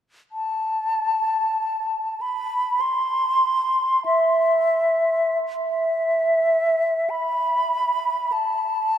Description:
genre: classical, free, expressive piece for unaccompanied flute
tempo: 32-51 BPM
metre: 4/4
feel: rubato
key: A minor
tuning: A4 = 440 Hz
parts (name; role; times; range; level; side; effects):
- mellow silver concert flute; solo; 0.3-9.0 s; E5 to C6; -19 LUFS; equal; none
room: wet cathedral reverb, RT60 6.1 s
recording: in a vast, echoing space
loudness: -19 LUFS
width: side -10 dB against mid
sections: 0.3-5.6 A section; 5.6-9.0 B section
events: none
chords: none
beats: | 0.33 1.61 2.81 4.05 | 5.64 7.09 8.32

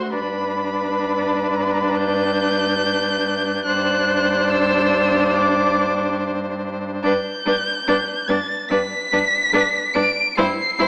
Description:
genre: classical, slow romantic movement for string quartet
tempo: 71 BPM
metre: 4/4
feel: rubato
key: G major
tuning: A4 = 440 Hz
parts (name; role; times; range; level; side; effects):
- warm violin; melody; 0.0-10.9 s; B5 to D7; -21 LUFS; equal; none
- rich violin; second line; 0.0-10.9 s; B4 to C5; -23 LUFS; equal; none
- rich viola; accompaniment; 0.0-10.9 s; D4 to E4; -21 LUFS; equal; none
- warm cello; bass; 0.0-10.9 s; D2 to G2; -27 LUFS; equal; none
room: wet recital hall reverb, RT60 1.5 s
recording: small speaker sound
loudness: -17 LUFS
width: side -36 dB against mid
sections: 0.0-10.9 A section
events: none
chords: 0.1 G; 10.4 C/G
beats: | 0.13 0.99 1.95 2.81 | 3.66 4.51 5.36 6.20 | 7.04 7.87 8.70 9.53 | 10.37

